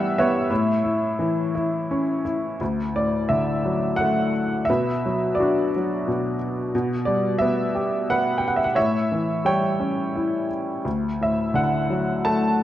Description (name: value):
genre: classical, lyrical solo piano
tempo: 87 BPM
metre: 3/4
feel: rubato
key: D major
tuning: A4 = 440 Hz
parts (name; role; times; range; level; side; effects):
- bright upright piano; solo; 0.0-12.6 s; D2 to A5; -20 LUFS; equal; none
room: light reverb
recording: dark, warm production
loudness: -20 LUFS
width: side -12 dB against mid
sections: 0.0-2.6 A section; 2.6-12.6 B section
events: none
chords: 0.0 Em/G; 0.5 A; 2.6 D; 4.7 Bm; 6.7 Em/B; 8.8 A7; 10.9 D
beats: | 0.50 1.19 1.90 | 2.61 3.31 4.00 | 4.69 5.38 6.06 | 6.73 7.41 8.09 | 8.77 9.46 10.16 | 10.86 11.56 12.26